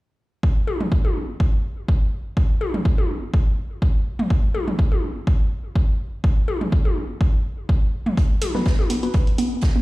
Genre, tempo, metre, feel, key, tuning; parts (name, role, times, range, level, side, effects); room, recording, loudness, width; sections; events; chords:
minimal techno; 124 BPM; 4/4; swing 54% on 16ths; A4 = 439 Hz
electronic kick drum; drums; 0.4-9.7 s; -18 LUFS; equal
electronic toms; percussion; 0.7-8.9 s; -26 LUFS; left 1 dB; tape echo
loose indie drum kit; drums; 8.2-9.8 s; hi-hat, snare drum; -36 LUFS; right 2 dB; high-pass filter on hats, high-pass filter on snare, high-pass filter on room
electronic hi-hat; drums; 8.4-9.5 s; -33 LUFS; right 1 dB
hollow square pluck; riff; 8.5-9.8 s; B3; -25 LUFS; right 2 dB; chorus, sidechain pumping, ping-pong delay
filtered dub chord stab; stabs; 8.5-9.1 s; F#3 to B4; -28 LUFS; left 2 dB; phaser, tape echo
studio reverb; played on a big sound system in a bare room, stone room reverb; -19 LUFS; side -20 dB against mid
0.4-9.8 A section
0.4 B5